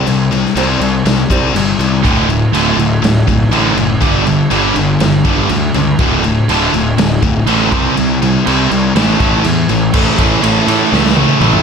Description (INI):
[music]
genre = quiet-loud alternative rock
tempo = 122 BPM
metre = 4/4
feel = straight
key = unclear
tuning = A4 = 439 Hz
[part]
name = picked old ladder-braced acoustic guitar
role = arpeggios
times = 0.0-2.0 s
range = C3 to C4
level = -22 LUFS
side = right 7 dB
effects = analog delay
[part]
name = scooped high-gain guitar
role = riff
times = 0.0-11.6 s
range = D2 to C4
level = -15 LUFS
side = left 10 dB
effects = distortion
[part]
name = fuzz picked electric bass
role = bass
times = 0.1-11.6 s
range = D1 to A2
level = -17 LUFS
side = equal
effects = overdrive
[part]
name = raw garage drum kit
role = drums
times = 0.1-11.6 s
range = crash cymbal, kick drum, ride cymbal, snare drum, toms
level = -16 LUFS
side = equal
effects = none
[part]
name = crunchy overdriven guitar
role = riff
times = 2.0-11.6 s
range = D2 to C4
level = -15 LUFS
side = right 13 dB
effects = none
[sound]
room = little or no reverb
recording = none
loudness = -10 LUFS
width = side -6 dB against mid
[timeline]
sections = 0.0-9.9 A section; 9.9-11.6 B section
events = drum fill 10.9-11.6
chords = 0.0 C5; 2.0 D5; 4.0 G5; 6.0 D5; 7.7 C5; 9.0 A5; 9.9 A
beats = | 0.06 0.56 1.05 1.54 | 2.04 2.53 3.03 3.52 | 4.01 4.51 5.00 5.50 | 5.99 6.48 6.98 7.47 | 7.96 8.46 8.95 9.44 | 9.94 10.43 10.92 11.42